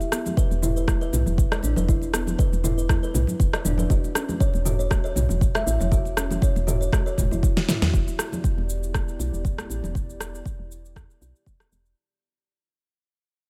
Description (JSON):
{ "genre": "afro house", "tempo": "119 BPM", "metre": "4/4", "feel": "swing 54% on 16ths", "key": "E dorian", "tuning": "A4 = 440 Hz", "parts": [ { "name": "deep house drum kit", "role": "drums", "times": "0.0-11.9 s", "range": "cabasa, rim click, snare drum, toms", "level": "-30 LUFS", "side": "equal", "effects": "none" }, { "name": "congas", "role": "percussion", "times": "0.0-9.9 s", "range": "none", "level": "-35 LUFS", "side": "equal", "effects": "none" }, { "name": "kalimba", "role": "arpeggios", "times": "0.1-7.9 s", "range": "B3 to E5", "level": "-32 LUFS", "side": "equal", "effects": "sidechain pumping, delay" }, { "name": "electronic kick drum", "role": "drums", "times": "0.4-11.6 s", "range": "none", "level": "-25 LUFS", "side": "equal", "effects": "none" }, { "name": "woody FM bass", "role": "bass", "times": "0.5-11.9 s", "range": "E1 to E2", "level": "-28 LUFS", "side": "equal", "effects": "sidechain pumping" }, { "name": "dark analog pad", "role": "sustained chords", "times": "7.9-11.9 s", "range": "B3 to D5", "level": "-42 LUFS", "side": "equal", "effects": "chorus, sidechain pumping" } ], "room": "digital ambience", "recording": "none", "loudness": "-23 LUFS", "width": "mono", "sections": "0.0-7.9 A section; 7.9-12.0 B section", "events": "drum fill 7.6-7.9; fade-out 7.9-12.0", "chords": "0.0 E5; 3.9 F#7(no3)/E; 7.9 Em7" }